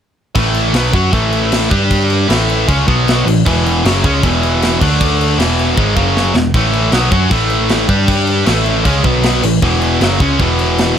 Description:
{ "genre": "punk rock", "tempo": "156 BPM", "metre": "4/4", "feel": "straight", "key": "unclear", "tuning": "A4 = 440 Hz", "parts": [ { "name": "tight distorted guitar", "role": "riff", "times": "0.4-11.0 s", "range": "E2 to G4", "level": "-13 LUFS", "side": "equal", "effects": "distortion" }, { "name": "hollow-body short-scale picked electric bass", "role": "bass", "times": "0.4-10.9 s", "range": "E1 to G2", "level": "-16 LUFS", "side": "equal", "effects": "none" }, { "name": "tight metal drum kit", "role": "drums", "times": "0.4-10.9 s", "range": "crash cymbal, kick drum, snare drum", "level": "-17 LUFS", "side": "equal", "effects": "none" } ], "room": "little or no reverb", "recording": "none", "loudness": "-11 LUFS", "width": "side -9 dB against mid", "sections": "0.4-11.0 A section", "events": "drum fill 6.2-6.5", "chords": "0.4 A5; 1.7 G5; 2.3 A5; 2.9 B5; 3.3 A5; 3.5 E; 4.8 D5; 5.4 E; 6.0 F#5; 6.4 E5; 6.5 A5; 7.9 G5; 8.5 A5; 9.0 B5; 9.4 A5; 9.6 E" }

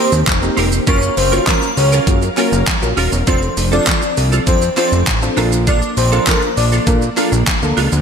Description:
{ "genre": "dance-pop", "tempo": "100 BPM", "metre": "4/4", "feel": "straight", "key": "Bb major", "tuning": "A4 = 440 Hz", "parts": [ { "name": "airy dreamy lead", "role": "melody", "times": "0.0-6.7 s", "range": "Bb4 to D5", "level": "-19 LUFS", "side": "equal", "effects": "chorus, sidechain pumping, slapback echo, ping-pong delay" }, { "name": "deep mellow chord stab", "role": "accompaniment", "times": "0.0-7.9 s", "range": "Bb3 to D5", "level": "-21 LUFS", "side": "equal", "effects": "chorus, sidechain pumping, slapback echo" }, { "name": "ensemble organ-string", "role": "sustained chords", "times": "0.0-8.0 s", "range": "Eb3 to F5", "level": "-24 LUFS", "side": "equal", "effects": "ensemble chorus, sidechain pumping" }, { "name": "direct-recorded clean electric guitar", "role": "riff", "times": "0.0-8.0 s", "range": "C4 to Bb4", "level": "-22 LUFS", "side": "right 4 dB", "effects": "ensemble chorus, slapback echo" }, { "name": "fat analog bass", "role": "bass", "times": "0.1-8.0 s", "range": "Eb1 to Bb2", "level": "-17 LUFS", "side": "equal", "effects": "sidechain pumping" }, { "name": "pop drum kit", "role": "drums", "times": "0.1-8.0 s", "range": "handclaps, hi-hat, kick drum, shaker, snare drum", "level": "-18 LUFS", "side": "equal", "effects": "overdrive" }, { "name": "group handclap", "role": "percussion", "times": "1.5-7.6 s", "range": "none", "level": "barely audible", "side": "none", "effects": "none" } ], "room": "moderate lush hall reverb, RT60 1.9 s, digital ambience", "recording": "big arena sound", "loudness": "-12 LUFS", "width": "side -6 dB against mid", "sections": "0.0-8.0 A section", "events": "none", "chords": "0.0 Eb6; 0.9 Gbmaj7; 3.3 Dm7/F; 5.4 Bbmaj7" }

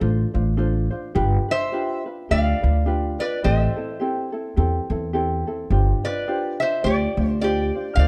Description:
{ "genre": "Hawaiian", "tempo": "106 BPM", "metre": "4/4", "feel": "swing 58% on 8ths", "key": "unclear", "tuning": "A4 = 439 Hz", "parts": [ { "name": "ukulele", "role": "accompaniment", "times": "0.0-8.1 s", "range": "C4 to C5", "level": "-29 LUFS", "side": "equal", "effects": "none" }, { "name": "upright bass", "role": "bass", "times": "0.0-8.1 s", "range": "G1 to E2", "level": "-23 LUFS", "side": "equal", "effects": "none" }, { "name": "lap resonator guitar", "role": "melody", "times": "1.5-8.1 s", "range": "G4 to F5", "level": "-26 LUFS", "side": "equal", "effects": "none" } ], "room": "light reverb", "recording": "dark, warm production", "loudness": "-22 LUFS", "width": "mono", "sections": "0.0-8.1 A section", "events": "none", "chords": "0.0 Dm7; 1.2 G7; 3.4 Am7; 5.7 G7sus4" }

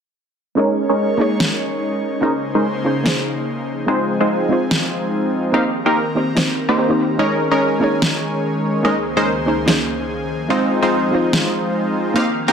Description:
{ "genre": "future bass", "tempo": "145 BPM", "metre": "4/4", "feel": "swing 56% on 16ths, half-time", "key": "F minor", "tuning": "A4 = 440 Hz", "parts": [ { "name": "soft round pluck", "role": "accompaniment", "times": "0.6-12.5 s", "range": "Ab3 to Db5", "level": "-23 LUFS", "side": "right 1 dB", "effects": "lush chorus, tape echo" }, { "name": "airy breathy pad", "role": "sustained chords", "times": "0.6-12.5 s", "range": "Db2 to Db5", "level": "-26 LUFS", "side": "left 1 dB", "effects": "chorus" }, { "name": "supersaw stab", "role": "riff", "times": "0.6-12.5 s", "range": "Ab3 to F5", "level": "-18 LUFS", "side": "equal", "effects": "low-pass filter, tape echo" }, { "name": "electronic snare drum", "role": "drums", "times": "1.4-11.4 s", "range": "none", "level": "-18 LUFS", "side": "equal", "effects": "studio reverb" } ], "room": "moderate digital room reverb, RT60 1.1 s", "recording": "dense, heavily limited modern master", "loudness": "-16 LUFS", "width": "side -7 dB against mid", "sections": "0.6-12.5 A section", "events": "filter sweep on supersaw synth 0.6-12.5", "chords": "0.6 Eb7sus4; 2.2 Bbm11/Db; 3.7 Fm7; 5.5 Cm7/Eb; 7.2 Eb7sus4; 8.8 Bbm11/Db; 10.3 Fm7" }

